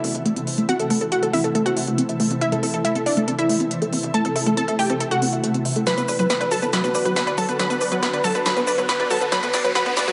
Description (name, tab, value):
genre	uplifting trance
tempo	139 BPM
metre	4/4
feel	straight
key	A dorian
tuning	A4 = 441 Hz
part	unison pluck	melody	0.0-10.1 s	D4 to B5	-25 LUFS	equal	cassette tape, dub echo
part	shimmering ambient pad	sustained chords	0.0-10.1 s	C3 to F#4	-29 LUFS	equal	chorus, built-in reverb
part	tight sequenced synth	arpeggios	0.0-10.1 s	F#3 to E5	-27 LUFS	equal	chorus
part	tight sequencer bass	bass	0.0-10.1 s	A1 to D2	-39 LUFS	equal	none
part	big-room dance drum kit	drums	0.0-10.1 s	hi-hat, shaker, snare drum	-30 LUFS	equal	high-pass filter on perc, high-pass filter on hats, high-pass filter on snare, high-pass filter on room
part	riser	sound effects	7.3-10.1 s	none	-34 LUFS	equal	none
room	moderate lush hall reverb, RT60 1.6 s, digital ambience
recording	high-pass filter, nothing above 11.0 kHz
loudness	-21 LUFS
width	mono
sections	0.0-10.1 A section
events	build-up 0.0-10.1; filter sweep on synth arpeggio sound 0.0-10.1; filter sweep 0.0-10.1; drum fill 5.9-10.1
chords	0.0 Am; 5.9 Bm; 9.3 D6